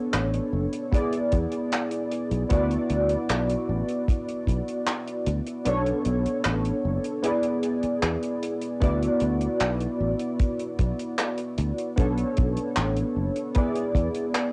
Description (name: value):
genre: vaporwave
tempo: 76 BPM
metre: 4/4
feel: straight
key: D lydian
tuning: A4 = 437 Hz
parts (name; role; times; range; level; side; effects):
- warbly lo-fi synth keys; accompaniment; 0.0-14.5 s; B3 to D5; -28 LUFS; equal; ensemble chorus, cassette tape, tape echo
- sustaining fretless electric bass; bass; 0.1-14.1 s; F#1 to E2; -29 LUFS; equal; none
- damped 70s drum kit; drums; 0.1-14.5 s; handclaps, hi-hat; -33 LUFS; equal; vintage 12-bit sampler grit, studio reverb
- kick drum; drums; 0.9-14.1 s; none; -25 LUFS; equal; vintage 12-bit sampler grit, studio reverb
room: moderate booth ambience, RT60 0.3 s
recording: home recording on cassette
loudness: -26 LUFS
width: mono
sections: 0.0-14.5 A section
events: kick drops out 5.7-8.8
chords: 0.0 Bm9; 0.9 E7; 2.5 D69; 5.7 Bm9; 7.2 E7; 8.8 D69; 12.0 Bm9; 13.6 E7